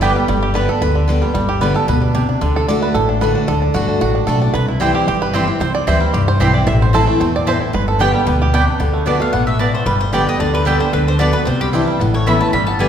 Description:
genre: bluegrass.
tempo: 225 BPM.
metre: 4/4.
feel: straight.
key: G major.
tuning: A4 = 439 Hz.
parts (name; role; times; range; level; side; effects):
bluegrass banjo; melody; 0.0-12.9 s; D3 to E5; -21 LUFS; right 4 dB; none.
picked steel-string acoustic guitar; accompaniment; 0.0-12.9 s; G2 to G4; -17 LUFS; left 2 dB; none.
mandolin; stabs; 0.0-0.1, 4.8-12.9 s; B3 to B5; -21 LUFS; right 4 dB; none.
upright bass; bass; 0.0-12.9 s; G1 to E2; -19 LUFS; equal; none.
mandolin; melody; 9.2-12.9 s; G4 to B5; -21 LUFS; left 1 dB; none.
room: wet recital hall reverb, RT60 1.8 s.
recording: recorded in a church or concert hall.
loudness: -13 LUFS.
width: side -8 dB against mid.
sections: 0.3-8.8 A section; 8.8-12.9 B section.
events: five-string banjo solo 0.0-8.8.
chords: 0.3 G; 2.4 D; 4.5 C; 6.7 Am; 7.7 G; 8.8 D6; 9.9 G; 10.9 D6; 11.5 Cadd9; 12.0 Aadd9.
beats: 0.02 | 0.29 0.55 0.82 1.08 | 1.35 1.62 1.88 2.15 | 2.42 2.68 2.95 3.21 | 3.48 3.75 4.01 4.28 | 4.54 4.81 5.08 5.34 | 5.61 5.87 6.14 6.41 | 6.67 6.94 7.20 7.47 | 7.73 8.00 8.27 8.53 | 8.80 9.06 9.33 9.60 | 9.87 10.13 10.40 10.66 | 10.93 11.20 11.47 11.73 | 12.00 12.27 12.53 12.80.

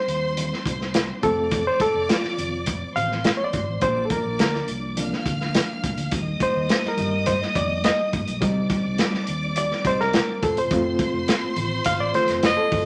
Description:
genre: uptempo 1960s-style soul.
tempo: 104 BPM.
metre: 4/4.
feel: straight.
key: unclear.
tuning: A4 = 437 Hz.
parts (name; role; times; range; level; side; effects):
warm studio violin section; second line; 0.0-12.9 s; C5 to F6; -33 LUFS; equal; none.
barky reed electric piano; accompaniment; 0.0-12.9 s; F3 to F5; -26 LUFS; equal; overdrive, fast tremolo.
mellow tonewheel organ; sustained chords; 0.0-12.9 s; F3 to F4; -36 LUFS; equal; none.
fingered electric bass; bass; 0.1-12.8 s; E1 to G2; -34 LUFS; equal; none.
crunchy breakbeat drum kit; drums; 0.1-12.9 s; hi-hat, kick drum, snare drum; -27 LUFS; equal; none.
congas; percussion; 0.4-12.9 s; none; -39 LUFS; equal; none.
breathy alto saxophone; melody; 12.5-12.9 s; Eb5; -23 LUFS; equal; none.
room: moderate studio reverb, RT60 0.8 s.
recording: none.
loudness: -23 LUFS.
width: mono.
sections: 0.0-12.9 A section.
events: reed electric piano solo 0.0-12.9.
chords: 0.0 Cm; 1.2 F; 3.8 Bb; 6.1 Eb; 8.4 Cm; 10.4 F.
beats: 0.37 0.94 | 1.52 2.09 2.67 3.25 | 3.82 4.39 4.97 5.54 | 6.12 6.69 7.27 7.84 | 8.42 8.99 9.56 10.14 | 10.71 11.29 11.86 12.43.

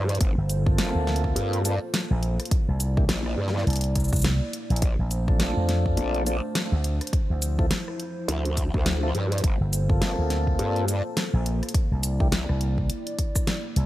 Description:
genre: glitch hop.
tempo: 104 BPM.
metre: 4/4.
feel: swing 59% on 16ths.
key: G dorian.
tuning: A4 = 440 Hz.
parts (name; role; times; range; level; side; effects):
dark analog pad; sustained chords; 0.0-13.9 s; F3 to D5; -34 LUFS; right 1 dB; chorus, sidechain pumping.
growl bass; bass; 0.0-12.5 s; G1 to G2; -26 LUFS; equal; chorus.
pop drum kit; drums; 0.1-13.9 s; hi-hat, rim click, shaker, snare drum; -29 LUFS; equal; small room ambience.
electronic kick drum; drums; 0.2-13.5 s; none; -24 LUFS; equal; small room ambience.
slap bass with an envelope filter; bass; 0.4-13.9 s; G1 to F2; -24 LUFS; equal; none.
mellow tonewheel organ; stabs; 0.7-12.3 s; Bb3 to A4; -31 LUFS; equal; slow rotary speaker, sidechain pumping, digital delay.
room: little or no reverb.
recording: bright 1980s-style digital production.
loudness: -22 LUFS.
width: side -15 dB against mid.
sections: 0.0-13.9 A section.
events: none.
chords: 0.2 Gm11; 2.5 C9; 4.8 Bbmaj9; 7.1 Dm9; 9.4 Gm11; 11.7 C9.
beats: | 0.21 0.79 1.36 1.94 | 2.52 3.09 3.67 4.25 | 4.82 5.40 5.98 6.55 | 7.13 7.71 8.29 8.86 | 9.44 10.02 10.59 11.17 | 11.75 12.32 12.90 13.48.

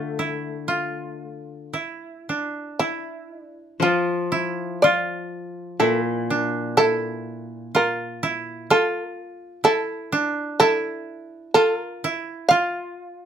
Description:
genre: japanese traditional, Japanese chamber music.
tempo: 55-64 BPM.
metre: 4/4.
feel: rubato.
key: D hirajoshi.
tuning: A4 = 442 Hz.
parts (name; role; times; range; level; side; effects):
shamisen; melody; 0.0-13.3 s; E4 to F5; -19 LUFS; right 1 dB; none.
koto; second line; 0.0-13.3 s; D4 to F4; -25 LUFS; right 2 dB; none.
koto; accompaniment; 0.0-8.7 s; Bb2 to A3; -28 LUFS; left 3 dB; none.
room: light reverb.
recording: none.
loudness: -20 LUFS.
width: side -8 dB against mid.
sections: 0.0-2.8 A section; 2.8-13.3 B section.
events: none.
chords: none.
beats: 0.68 1.73 | 2.79 3.81 4.81 5.80 | 6.78 7.75 8.69 9.63 | 10.59 11.54 12.49.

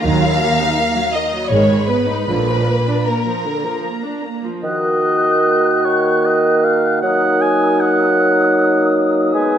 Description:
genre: classical, slow romantic movement for symphony orchestra.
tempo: 74-84 BPM.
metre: 3/4.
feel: rubato.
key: Eb minor.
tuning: A4 = 440 Hz.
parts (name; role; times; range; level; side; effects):
warm studio violin section; melody; 0.0-4.4 s; Bb5 to Cb6; -29 LUFS; left 3 dB; none.
rich studio violin section; second line; 0.0-3.8 s; Bb4 to F5; -19 LUFS; left 2 dB; none.
rich studio viola section; accompaniment; 0.0-4.6 s; D3 to Eb4; -22 LUFS; right 2 dB; none.
dark studio double bass section; bass; 0.1-2.9 s; Ab1 to Eb2; -23 LUFS; right 3 dB; none.
warm studio cello section; bass; 0.1-2.9 s; Eb2 to Bb2; -21 LUFS; right 2 dB; none.
mellow clarinet; second line; 4.6-9.6 s; Bb4 to Cb5; -21 LUFS; right 2 dB; none.
mellow small flute group; second line; 4.6-9.6 s; Eb6 to Gb6; -22 LUFS; left 2 dB; none.
warm oboe; second line; 4.6-9.6 s; Db5 to Ab5; -18 LUFS; equal; none.
mellow bassoon; accompaniment; 4.6-9.6 s; Eb3 to Ab3; -18 LUFS; equal; none.
warm French horn section; sustained chords; 4.6-9.6 s; Bb3 to Gb4; -19 LUFS; equal; none.
room: wet scoring stage reverb, RT60 1.9 s.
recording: none.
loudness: -13 LUFS.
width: side -9 dB against mid.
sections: 0.0-4.6 A section; 4.6-9.6 B section.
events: none.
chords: 0.1 Ebm; 1.5 Abm; 2.3 Bb; 4.6 Ebm; 7.0 Ebm/Gb.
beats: | 0.06 0.78 1.51 | 2.28 3.07 3.85 | 4.63 5.44 6.24 | 7.03 7.79 8.58 | 9.35.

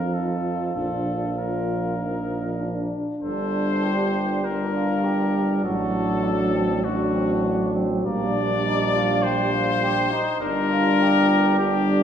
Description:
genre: classical, brass quintet.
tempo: 100 BPM.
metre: 4/4.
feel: rubato.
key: Bb major, G minor from 3.2 s.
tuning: A4 = 440 Hz.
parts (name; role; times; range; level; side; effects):
clear trumpet; melody; 0.0-12.0 s; F#4 to D5; -27 LUFS; left 6 dB; none.
mellow flugelhorn; second line; 0.0-11.9 s; Bb3 to A4; -28 LUFS; right 3 dB; none.
mellow euphonium; accompaniment; 0.0-12.0 s; F3 to G3; -26 LUFS; right 1 dB; none.
warm tuba; bass; 0.0-12.0 s; G1 to F2; -28 LUFS; right 2 dB; none.
warm French horn; accompaniment; 0.1-12.0 s; D4 to F4; -27 LUFS; left 1 dB; none.
room: wet recital hall reverb, RT60 1.6 s.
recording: heard from further back in the room.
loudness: -20 LUFS.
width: side -8 dB against mid.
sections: 0.0-3.2 A section; 3.2-12.0 B section.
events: none.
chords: 0.1 F7; 0.8 Bb; 3.2 Gm; 5.6 D/A; 8.0 Gm/Bb; 10.4 Gm.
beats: 0.14 | 0.75 1.37 1.99 2.61 | 3.23 3.84 4.44 5.04 | 5.65 6.24 6.84 7.45 | 8.05 8.65 9.23 9.82 | 10.41 11.01 11.60.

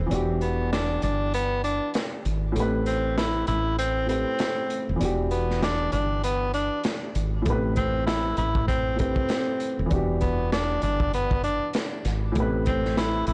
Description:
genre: hip hop, boom-bap hip-hop.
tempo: 98 BPM.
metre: 4/4.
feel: swing 61% on 16ths.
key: A minor.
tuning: A4 = 440 Hz.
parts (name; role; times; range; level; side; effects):
breathy tenor saxophone; melody; 0.0-13.3 s; B3 to E4; -30 LUFS; equal; high-pass filter, low-pass filter, digital delay.
dark upright piano; accompaniment; 0.0-13.3 s; A2 to B4; -32 LUFS; equal; cassette tape, high-pass filter, low-pass filter.
woody fretless electric bass; bass; 0.0-13.3 s; D#1 to A1; -30 LUFS; equal; transformer saturation.
crunchy breakbeat drum kit; drums; 0.1-13.3 s; hi-hat, kick drum, snare drum; -32 LUFS; equal; vintage 12-bit sampler grit.
room: light reverb, studio reverb.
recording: blown-out, overdriven recording, vinyl crackle, overdrive.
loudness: -25 LUFS.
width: mono.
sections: 0.0-13.3 A section.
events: break 0.0-7.5.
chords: 0.1 Em9; 2.6 Am9; 5.0 Em9; 7.5 Am9; 9.9 Em9; 12.4 Am9.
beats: | 0.11 0.72 1.34 1.95 | 2.56 3.17 3.79 4.40 | 5.01 5.62 6.24 6.85 | 7.46 8.07 8.68 9.30 | 9.91 10.52 11.13 11.75 | 12.36 12.97.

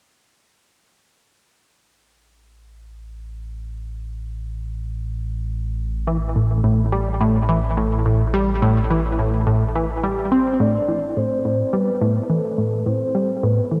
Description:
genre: ambient, sequencer-driven space music.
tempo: 106 BPM.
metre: 4/4.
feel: straight.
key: A minor.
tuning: A4 = 440 Hz.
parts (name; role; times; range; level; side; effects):
analog drone; bass; 3.1-10.6 s; A1; -28 LUFS; equal; chorus.
tight sequenced synth; riff; 6.1-13.8 s; A2 to C4; -21 LUFS; equal; chorus, delay.
soft octave-layered synth lead; melody; 10.6-13.8 s; A4 to D5; -25 LUFS; equal; chorus, tremolo, delay.
room: moderate plate reverb, RT60 2.9 s.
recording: dreamy mix soaked in reverb.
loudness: -21 LUFS.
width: mono.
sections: 1.5-10.6 A section; 10.6-13.8 B section.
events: fade-in on synth drone 1.5-10.6; filter sweep on synth arpeggio sound 10.6-13.8.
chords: 1.5 N.C.; 10.6 Am.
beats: | 1.54 2.11 2.68 3.24 | 3.81 4.38 4.94 5.51 | 6.07 6.64 7.21 7.77 | 8.34 8.90 9.47 10.04 | 10.60 11.17 11.73 12.30 | 12.87 13.43.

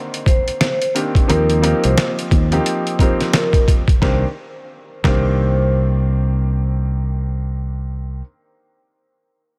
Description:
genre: hip hop, boom-bap hip-hop.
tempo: 88 BPM.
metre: 4/4.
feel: swing 60% on 16ths.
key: C minor.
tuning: A4 = 441 Hz.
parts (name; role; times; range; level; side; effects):
warm grand piano; accompaniment; 0.0-8.2 s; D3 to G4; -26 LUFS; equal; cassette tape, high-pass filter, low-pass filter.
trip hop sampler-style drum kit; drums; 0.1-5.3 s; hi-hat, kick drum, snare drum; -18 LUFS; equal; none.
vibraphone with soft mallets; melody; 0.3-6.0 s; Bb4 to C5; -26 LUFS; equal; high-pass filter, low-pass filter, delay.
fingered electric bass; bass; 1.3-8.2 s; C2 to Eb2; -20 LUFS; equal; none.
room: little or no reverb.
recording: none.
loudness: -17 LUFS.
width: mono.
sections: 0.0-4.0 A section; 4.0-6.7 B section.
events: none.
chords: 0.0 Cm7; 1.3 Eb6; 4.0 Cm7.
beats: 0.61 | 1.29 1.97 2.65 3.34 | 4.02 4.70 5.38 6.06.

